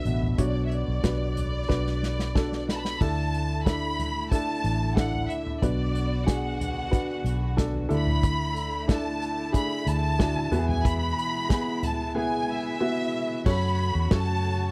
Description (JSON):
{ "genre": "piano-driven pop", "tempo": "92 BPM", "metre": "4/4", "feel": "straight", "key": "unclear", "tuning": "A4 = 440 Hz", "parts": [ { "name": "rich studio violin section", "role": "melody", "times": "0.0-14.7 s", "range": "D5 to B5", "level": "-34 LUFS", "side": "equal", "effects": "slapback echo" }, { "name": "warm upright piano", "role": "accompaniment", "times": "0.0-14.7 s", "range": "B2 to C#5", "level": "-32 LUFS", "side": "equal", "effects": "none" }, { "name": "vintage muted fingered electric bass", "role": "bass", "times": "0.1-14.7 s", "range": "A1 to F#2", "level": "-30 LUFS", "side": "equal", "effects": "none" }, { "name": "unplugged drum kit", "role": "drums", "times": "0.1-14.6 s", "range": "crash cymbal, hi-hat, kick drum, ride cymbal, snare drum, toms", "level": "-30 LUFS", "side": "equal", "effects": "none" }, { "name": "warm studio string section", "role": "sustained chords", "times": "3.0-14.7 s", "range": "B2 to F#4", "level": "-41 LUFS", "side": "equal", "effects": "none" } ], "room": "little or no reverb", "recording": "dry, close 1970s-style studio recording", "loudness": "-26 LUFS", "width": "mono", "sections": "0.0-3.0 A section; 3.0-13.5 B section; 13.5-14.7 C section", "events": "drum fill 1.7-3.0", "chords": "0.0 Bm; 3.0 Dsus2; 5.6 Bm; 7.9 Dsus2; 10.5 E; 13.5 F#m", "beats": "| 0.38 1.04 1.69 2.35 | 3.00 3.66 4.31 4.97 | 5.62 6.28 6.93 7.58 | 8.24 8.89 9.54 10.20 | 10.85 11.50 12.15 12.81 | 13.46 14.11" }